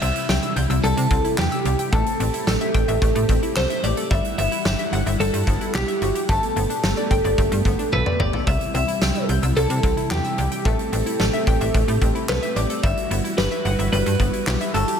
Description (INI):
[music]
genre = synth-pop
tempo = 110 BPM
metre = 4/4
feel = straight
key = E minor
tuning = A4 = 440 Hz
[part]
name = twelve-string electric guitar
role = melody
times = 0.0-15.0 s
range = G4 to E5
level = -24 LUFS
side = equal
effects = phaser, ping-pong delay
[part]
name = string machine, cellos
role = sustained chords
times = 0.0-15.0 s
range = C3 to F#5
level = -27 LUFS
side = equal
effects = ensemble chorus
[part]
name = analog pluck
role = arpeggios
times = 0.0-15.0 s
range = G3 to G6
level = -30 LUFS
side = left 5 dB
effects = chorus, ping-pong delay
[part]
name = slap-like FM bass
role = bass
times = 0.0-14.8 s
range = G1 to C3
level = -23 LUFS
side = equal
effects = none
[part]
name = huge arena drum kit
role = drums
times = 0.0-15.0 s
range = handclaps, hi-hat, kick drum, snare drum, toms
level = -24 LUFS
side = equal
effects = none
[sound]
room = studio reverb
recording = none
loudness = -18 LUFS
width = side -7 dB against mid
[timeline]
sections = 0.0-15.0 A section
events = drum fill 7.9-8.5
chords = 0.0 C; 1.9 Am7; 4.1 Emadd9/G; 6.3 Gadd9; 8.5 C; 10.7 Am7; 12.8 Emadd9/G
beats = 0.29 0.83 1.38 | 1.93 2.47 3.02 3.56 | 4.11 4.65 5.20 5.74 | 6.29 6.83 7.38 7.93 | 8.47 9.02 9.56 10.11 | 10.65 11.20 11.74 12.29 | 12.84 13.38 13.93 14.47